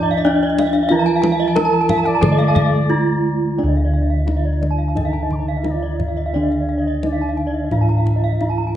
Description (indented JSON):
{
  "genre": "Balinese gamelan",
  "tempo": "87-94 BPM",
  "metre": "4/4",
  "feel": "straight",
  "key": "D pelog",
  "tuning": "A4 = 440 Hz",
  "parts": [
    { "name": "gamelan-type bronze metallophone", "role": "melody", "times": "0.0-8.8 s", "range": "D4 to D5", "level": "-22 LUFS", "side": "equal", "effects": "none" },
    { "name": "gamelan-type bronze metallophone", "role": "accompaniment", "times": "0.0-8.8 s", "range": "D3 to D4", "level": "-26 LUFS", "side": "right 4 dB", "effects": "none" },
    { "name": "gamelan-type bronze metallophone", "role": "arpeggios", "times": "0.0-8.7 s", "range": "D5 to Bb5-40c", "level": "-25 LUFS", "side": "right 6 dB", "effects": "none" },
    { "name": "gamelan-type bossed gongs", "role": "bass", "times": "0.0-8.8 s", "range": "D2 to E4+50c", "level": "-19 LUFS", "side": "equal", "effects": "none" },
    { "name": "gamelan-type bronze metallophone", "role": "arpeggios", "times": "0.2-8.8 s", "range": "D5 to Bb5-40c", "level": "-26 LUFS", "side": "left 3 dB", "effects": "none" },
    { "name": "kendang", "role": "percussion", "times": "0.3-8.6 s", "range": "none", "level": "-25 LUFS", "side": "left 2 dB", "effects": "none" },
    { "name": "bright reedy bansuri", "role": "second line", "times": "1.4-8.8 s", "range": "D5 to D6", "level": "-28 LUFS", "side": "left 3 dB", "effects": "none" }
  ],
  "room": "moderate recital hall reverb, RT60 1.5 s",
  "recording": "dark, warm production, nothing above 10.6 kHz",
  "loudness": "-15 LUFS",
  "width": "side -11 dB against mid",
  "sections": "0.0-3.6 A section; 3.6-8.8 B section",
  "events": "none",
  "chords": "none",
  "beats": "0.26 | 0.90 1.56 2.22 2.90 | 3.58 4.27 4.96 5.65 | 6.34 7.03 7.72 8.41"
}